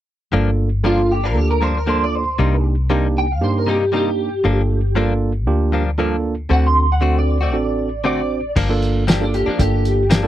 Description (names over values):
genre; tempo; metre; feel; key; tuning
straight-eighth soul blues; 117 BPM; 4/4; swing 54% on 16ths; G minor; A4 = 440 Hz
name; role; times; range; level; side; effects
tine electric piano; accompaniment; 0.3-10.3 s; Bb3 to C5; -22 LUFS; right 4 dB; overdrive
direct-recorded clean electric guitar; stabs; 0.3-10.3 s; G2 to F#4; -22 LUFS; left 6 dB; none
vintage muted fingered electric bass; bass; 0.3-10.3 s; G1 to G2; -19 LUFS; left 1 dB; none
electric guitar at the edge of break-up; melody; 0.9-10.3 s; D4 to C6; -21 LUFS; right 1 dB; ensemble chorus
cloth-damped thuddy drum kit; drums; 8.6-10.2 s; crash cymbal, hi-hat, kick drum, snare drum, tambourine; -18 LUFS; equal; none
room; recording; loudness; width
little or no reverb; dry, close 1970s-style studio recording; -16 LUFS; side -12 dB against mid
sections
0.3-8.6 A section; 8.6-10.3 B section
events
clean electric guitar solo 8.6-10.3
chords
0.3 Gm7; 2.4 Cm7; 4.4 Gm7; 6.5 D7; 8.6 Gm7